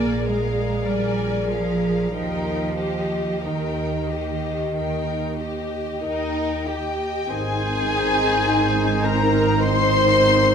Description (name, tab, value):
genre	classical, slow romantic movement for symphony orchestra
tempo	45-54 BPM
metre	4/4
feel	rubato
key	Eb major, Ab major from 7.3 s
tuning	A4 = 440 Hz
part	warm studio violin section	melody	0.0-10.5 s	Eb5 to C6	-28 LUFS	left 5 dB	none
part	rich studio violin section	second line	0.0-10.5 s	Eb4 to D5	-28 LUFS	left 3 dB	none
part	rich studio viola section	accompaniment	0.0-10.5 s	C4 to Bb4	-30 LUFS	equal	none
part	mellow French horn section	sustained chords	0.0-10.5 s	C4 to Eb5	-28 LUFS	left 5 dB	none
part	rich studio cello section	bass	0.0-10.5 s	Ab2 to Bb3	-28 LUFS	right 3 dB	none
part	warm studio double bass section	bass	0.0-10.5 s	Ab1 to Eb2	-27 LUFS	right 5 dB	none
part	bright concert flute	second line	6.0-10.5 s	Eb5 to C6	-30 LUFS	left 2 dB	none
part	mellow trumpet section	stabs	6.0-10.5 s	Eb4 to C5	-25 LUFS	right 2 dB	none
part	bright clarinet	second line	7.3-10.5 s	Eb4	-30 LUFS	equal	none
part	clear oboe	second line	7.3-10.5 s	C5	-30 LUFS	equal	none
part	dark bassoon	accompaniment	7.3-10.5 s	Eb3	-28 LUFS	right 3 dB	none
room	wet recital hall reverb, RT60 1.6 s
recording	none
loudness	-19 LUFS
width	side -7 dB against mid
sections	0.0-7.3 A section; 7.3-10.5 B section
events	none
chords	0.0 Bb7; 2.1 Eb; 7.3 Ab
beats	0.85 | 2.13 3.43 4.74 6.02 | 7.30 8.47 9.61